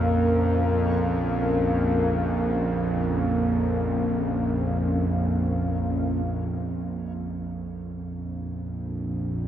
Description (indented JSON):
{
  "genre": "dark ambient drone",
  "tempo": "free time",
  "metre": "none",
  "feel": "none",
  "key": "Bb minor",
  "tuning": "A4 = 439 Hz",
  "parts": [
    { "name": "deep dark ambient pad", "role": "sustained chords", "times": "0.0-9.5 s", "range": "Bb3 to F5", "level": "-27 LUFS", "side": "equal", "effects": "chorus, built-in reverb" },
    { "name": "bowed-like drone", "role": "drone", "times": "0.0-9.5 s", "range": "Bb1 to F2", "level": "-25 LUFS", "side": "right 1 dB", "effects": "built-in reverb" },
    { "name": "backwards swelling texture", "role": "texture", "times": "0.2-6.3 s", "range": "Db4", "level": "-51 LUFS", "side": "right 1 dB", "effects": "none" }
  ],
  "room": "wet huge ambient reverb, RT60 9.2 s",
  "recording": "in a vast, echoing space",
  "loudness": "-23 LUFS",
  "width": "side -10 dB against mid",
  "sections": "0.0-6.3 A section; 6.3-9.5 B section",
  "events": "fade-in on ambient pad 6.3-9.5",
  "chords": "0.0 Bbm; 6.3 Bbmadd9"
}